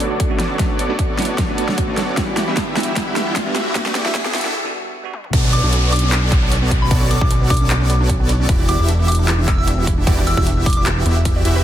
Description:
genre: future bass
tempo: 152 BPM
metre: 4/4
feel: swing 54% on 16ths, half-time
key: unclear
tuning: A4 = 443 Hz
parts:
  - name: bell-like tine electric piano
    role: accompaniment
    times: 0.0-5.1 s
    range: G3 to F#5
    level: -26 LUFS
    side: right 2 dB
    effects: fast stereo tremolo, sidechain pumping, ping-pong delay
  - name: muted studio string section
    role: sustained chords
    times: 0.0-4.5 s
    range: D3 to E4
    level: -33 LUFS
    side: left 2 dB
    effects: none
  - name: wide unison pluck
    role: arpeggios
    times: 0.0-11.6 s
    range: B3 to E5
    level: -29 LUFS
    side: right 4 dB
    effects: sidechain pumping, ping-pong delay
  - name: supersaw chords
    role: riff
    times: 0.0-11.6 s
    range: E3 to E5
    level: -23 LUFS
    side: right 1 dB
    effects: sidechain pumping, low-pass filter, ping-pong delay
  - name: fat analog bass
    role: bass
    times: 0.0-11.6 s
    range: E1 to B1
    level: -19 LUFS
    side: equal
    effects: sidechain pumping, high-pass filter
  - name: big-room dance drum kit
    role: drums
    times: 0.0-11.5 s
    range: crash cymbal, handclaps, hi-hat, snare drum, toms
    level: -23 LUFS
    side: equal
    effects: overdrive
  - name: riser and downlifter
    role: sound effects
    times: 1.1-8.5 s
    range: none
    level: -27 LUFS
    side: left 1 dB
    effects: none
  - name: electronic kick drum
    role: drums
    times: 0.2-11.3 s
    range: none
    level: -19 LUFS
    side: equal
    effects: overdrive
  - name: soft synth bell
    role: melody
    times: 5.5-10.8 s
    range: B5 to E6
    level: -25 LUFS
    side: left 1 dB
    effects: chorus, sidechain pumping, ping-pong delay
room: light reverb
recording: dense, heavily limited modern master, high-pass filter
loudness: -15 LUFS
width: side -11 dB against mid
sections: 0.0-5.3 A section; 5.3-11.6 B section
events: build-up 0.0-5.3; drum fill 0.0-4.5, 5.1; filter sweep on supersaw synth 0.0-5.3; filter sweep 0.0-5.3; break 4.5-5.3; drop 5.3-11.6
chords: 0.0 Bm9; 2.2 Em7; 5.3 Bm9; 8.5 Em7

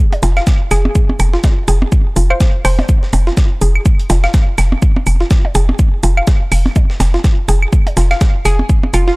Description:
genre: minimal techno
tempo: 124 BPM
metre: 4/4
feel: swing 58% on 16ths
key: F minor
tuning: A4 = 440 Hz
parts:
  - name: breakbeat sampler-style drum kit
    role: drums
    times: 0.1-9.2 s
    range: hi-hat, shaker, snare drum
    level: -28 LUFS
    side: equal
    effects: high-pass filter on perc, high-pass filter on hats, high-pass filter on snare
  - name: percussion blips and claves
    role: percussion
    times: 0.1-9.0 s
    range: none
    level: -21 LUFS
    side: right 2 dB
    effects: analog delay
  - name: hollow square pluck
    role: riff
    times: 0.2-9.1 s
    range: F4 to F5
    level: -22 LUFS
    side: equal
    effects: chorus, sidechain pumping, analog delay
  - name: hollow knocking FM bass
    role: bass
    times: 0.2-9.1 s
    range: F1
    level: -13 LUFS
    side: equal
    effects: sidechain pumping
  - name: electronic hi-hat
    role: drums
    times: 0.2-9.0 s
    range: none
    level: -25 LUFS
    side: right 1 dB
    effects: none
  - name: electronic kick drum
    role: drums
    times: 0.5-8.8 s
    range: none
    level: -11 LUFS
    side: equal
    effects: none
  - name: hollow square pluck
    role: melody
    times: 0.7-3.0, 8.5-9.1 s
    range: F4 to C5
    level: -21 LUFS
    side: equal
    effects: chorus, analog delay
room: digital ambience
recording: dry, gritty hardware recording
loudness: -10 LUFS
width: side -25 dB against mid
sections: 0.0-9.2 A section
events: none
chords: none

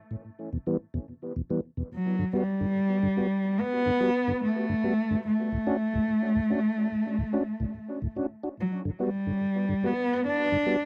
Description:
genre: reggae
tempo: 72 BPM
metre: 4/4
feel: swing 64% on 16ths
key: unclear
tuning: A4 = 439 Hz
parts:
  - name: mellow tonewheel organ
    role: accompaniment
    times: 0.1-10.8 s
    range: D2 to F#4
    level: -33 LUFS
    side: equal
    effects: overdrive, chorus vibrato, slow rotary speaker, tape echo
  - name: dark cello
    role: melody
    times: 1.9-10.9 s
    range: F#3 to D4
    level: -28 LUFS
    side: equal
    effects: dub echo
room: light reverb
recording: dry, close 1970s-style studio recording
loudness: -28 LUFS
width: mono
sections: 0.0-1.9 A section; 1.9-10.9 B section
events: none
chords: 0.3 Em; 1.9 Gmaj7; 5.3 Dmaj7; 8.6 Gmaj7

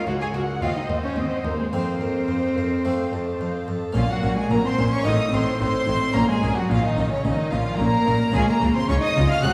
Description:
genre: classical, baroque-style concerto movement with solo episodes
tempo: 109 BPM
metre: 4/4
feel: straight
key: Bb minor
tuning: A4 = 440 Hz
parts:
  - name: warm cello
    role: melody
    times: 0.0-9.5 s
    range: Db3 to Ab4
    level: -28 LUFS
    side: equal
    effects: none
  - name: warm chamber violin section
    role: melody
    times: 0.0-9.5 s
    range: C5 to Gb6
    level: -31 LUFS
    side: equal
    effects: none
  - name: warm studio violin section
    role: second line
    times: 0.0-9.5 s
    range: Db4 to Ab5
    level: -31 LUFS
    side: equal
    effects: none
  - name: harpsichord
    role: accompaniment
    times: 0.0-9.5 s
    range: Db2 to Gb4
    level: -32 LUFS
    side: equal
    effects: none
  - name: warm studio viola section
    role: accompaniment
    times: 0.0-9.5 s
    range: Db4 to Eb5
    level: -36 LUFS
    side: equal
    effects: none
  - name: rich studio cello section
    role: bass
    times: 0.1-9.5 s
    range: Db2 to Db3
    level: -30 LUFS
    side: equal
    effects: none
  - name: rich chamber double bass section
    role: bass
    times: 4.0-9.5 s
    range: A1 to Db2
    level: -29 LUFS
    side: equal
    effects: none
room: wet scoring stage reverb, RT60 1.9 s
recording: heard from further back in the room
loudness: -22 LUFS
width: mono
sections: 0.0-4.0 A section; 4.0-9.5 B section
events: none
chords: 0.0 Bbm/Db; 0.6 Cdim/Eb; 1.7 Fsus4; 2.8 F; 4.0 Bbm; 5.1 F7/A; 6.2 Bbm; 8.3 Db

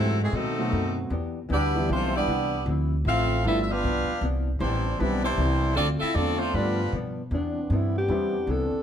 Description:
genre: jazz, big band swing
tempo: 155 BPM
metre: 4/4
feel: swing 65% on 8ths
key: C major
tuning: A4 = 440 Hz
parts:
  - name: edgy saxophone section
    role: melody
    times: 0.0-6.9 s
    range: E3 to F5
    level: -28 LUFS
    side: equal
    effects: plate reverb
  - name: warm trombone section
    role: second line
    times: 0.0-6.9 s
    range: C3 to F4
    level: -30 LUFS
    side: right 1 dB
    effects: none
  - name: hollow-body jazz guitar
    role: accompaniment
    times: 0.0-8.8 s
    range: F#2 to G4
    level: -33 LUFS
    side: left 3 dB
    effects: none
  - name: upright bass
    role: bass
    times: 0.0-8.8 s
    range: G1 to B2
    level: -27 LUFS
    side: equal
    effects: none
  - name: warm grand piano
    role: accompaniment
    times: 0.6-8.3 s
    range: B2 to F#4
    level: -31 LUFS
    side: right 1 dB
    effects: none
  - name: dark alto saxophone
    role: melody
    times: 7.3-8.8 s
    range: D4 to A4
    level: -28 LUFS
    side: left 2 dB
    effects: plate reverb
  - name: clear trombone section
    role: sustained chords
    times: 7.3-8.8 s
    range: E3 to D4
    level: -35 LUFS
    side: right 2 dB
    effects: none
room: moderate club reverb, RT60 0.8 s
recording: none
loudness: -23 LUFS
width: side -9 dB against mid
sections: 0.0-7.3 A section; 7.3-8.8 B section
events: alto saxophone solo 7.3-8.8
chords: 0.3 B7b9; 1.1 Em7; 2.7 Dm9; 3.4 G7; 4.2 Cmaj9; 5.8 Dm7; 6.5 G7; 7.3 Cmaj9

